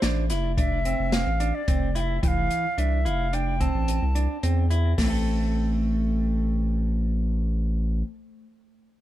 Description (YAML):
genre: progressive instrumental, band music in an uneven meter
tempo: 109 BPM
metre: 5/4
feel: straight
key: A minor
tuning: A4 = 444 Hz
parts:
  - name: bright wooden flute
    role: melody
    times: 0.0-4.4 s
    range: C5 to A5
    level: -29 LUFS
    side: equal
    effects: plate reverb
  - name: clean electric guitar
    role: arpeggios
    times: 0.0-8.1 s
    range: E3 to A4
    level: -29 LUFS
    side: right 1 dB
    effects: ping-pong delay
  - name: saturated sub bass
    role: bass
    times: 0.0-8.0 s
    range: F1 to E2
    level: -24 LUFS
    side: equal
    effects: none
  - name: open jazz drum kit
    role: drums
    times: 0.0-5.1 s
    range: hi-hat, kick drum, snare drum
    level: -27 LUFS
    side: equal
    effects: none
room: light reverb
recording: dark, warm production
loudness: -22 LUFS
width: side -14 dB against mid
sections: 0.0-5.0 A section; 5.0-7.7 B section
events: none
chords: 0.0 Dm7/F; 5.0 Am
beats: 0.03 0.57 1.12 1.68 | 2.23 2.78 3.33 3.88 4.43 | 4.98 5.53 6.08 6.63 7.18